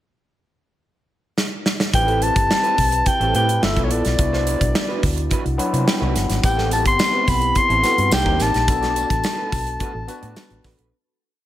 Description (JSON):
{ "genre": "polished 1980s jazz-funk pop", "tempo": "107 BPM", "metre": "4/4", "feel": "straight", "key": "A dorian", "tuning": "A4 = 440 Hz", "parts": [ { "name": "modern studio drum kit", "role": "drums", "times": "1.4-10.9 s", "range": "hi-hat, kick drum, snare drum", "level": "-22 LUFS", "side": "right 1 dB", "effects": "gated reverb" }, { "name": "mellow soprano saxophone", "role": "melody", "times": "1.9-10.7 s", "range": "C#5 to C6", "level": "-20 LUFS", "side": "left 1 dB", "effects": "none" }, { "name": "overdriven tine electric piano", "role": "accompaniment", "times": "1.9-10.9 s", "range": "F#3 to B5", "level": "-25 LUFS", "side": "left 2 dB", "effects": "lush chorus" }, { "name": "electric guitar through a small old amp", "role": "riff", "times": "1.9-10.9 s", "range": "F3 to D5", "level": "-30 LUFS", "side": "right 6 dB", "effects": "ensemble chorus" }, { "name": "vintage muted fingered electric bass", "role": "bass", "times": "1.9-10.9 s", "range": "G1 to C3", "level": "-23 LUFS", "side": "equal", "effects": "none" }, { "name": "tambourine", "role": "percussion", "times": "6.4-10.8 s", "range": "none", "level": "-35 LUFS", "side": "left 4 dB", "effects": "none" } ], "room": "light reverb, small room ambience", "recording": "none", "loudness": "-16 LUFS", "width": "side -13 dB against mid", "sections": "0.0-1.9 pickup bar; 1.9-10.9 verse", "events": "drum fill 1.4-1.9; tine electric piano fill 5.3-6.4; fade-out 8.7-10.9", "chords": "0.0 N.C.; 1.9 Am7; 3.6 G13; 4.2 Cmaj9#11; 6.4 Am7; 8.1 Cm7; 8.7 Bm7" }